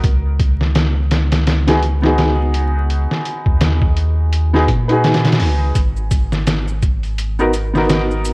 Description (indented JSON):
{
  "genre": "trip hop",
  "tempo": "84 BPM",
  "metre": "4/4",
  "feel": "swing 58% on 16ths",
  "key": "unclear",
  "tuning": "A4 = 444 Hz",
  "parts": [
    { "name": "clear upright piano", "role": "accompaniment", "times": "0.0-8.3 s", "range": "B3 to B4", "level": "-18 LUFS", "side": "equal", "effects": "harmonic tremolo, tape echo" },
    { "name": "warm sub bass", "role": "bass", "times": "0.0-8.3 s", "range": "G#1 to A#2", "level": "-17 LUFS", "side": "equal", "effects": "tube saturation" },
    { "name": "trip hop sampler-style drum kit", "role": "drums", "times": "0.0-8.3 s", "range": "hi-hat, kick drum, snare drum", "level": "-17 LUFS", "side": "equal", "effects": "none" },
    { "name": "maracas", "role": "percussion", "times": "5.8-8.3 s", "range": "none", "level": "-36 LUFS", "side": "right 2 dB", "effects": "none" }
  ],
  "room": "light reverb",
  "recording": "worn, warbling old tape, cassette tape, vinyl crackle, warbly pitch drift",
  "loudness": "-13 LUFS",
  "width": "side -26 dB against mid",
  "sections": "0.0-8.3 A section",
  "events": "none",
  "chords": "0.0 C#7sus4; 5.8 G#m7"
}